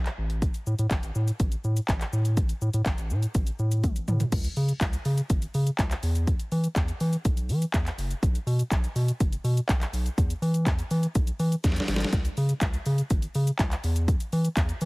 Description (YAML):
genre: dance-pop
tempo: 123 BPM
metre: 4/4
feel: straight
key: C# minor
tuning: A4 = 439 Hz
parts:
  - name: round analog bass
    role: bass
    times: 0.0-14.9 s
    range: F#1 to E3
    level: -26 LUFS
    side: equal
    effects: sidechain pumping
  - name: pop drum kit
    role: drums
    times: 0.1-14.9 s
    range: crash cymbal, handclaps, hi-hat, kick drum, shaker, snare drum, toms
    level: -27 LUFS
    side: equal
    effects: none
room: little or no reverb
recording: heavily compressed radio sound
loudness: -24 LUFS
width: side -27 dB against mid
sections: 0.0-4.3 A section; 4.3-14.9 B section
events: drum fill 3.8-4.3, 11.6-12.1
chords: none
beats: | 0.42 0.91 1.40 1.89 | 2.37 2.86 3.35 3.84 | 4.32 4.81 5.30 5.79 | 6.28 6.76 7.25 7.74 | 8.23 8.71 9.20 9.69 | 10.18 10.66 11.15 11.64 | 12.13 12.62 13.10 13.59 | 14.08 14.57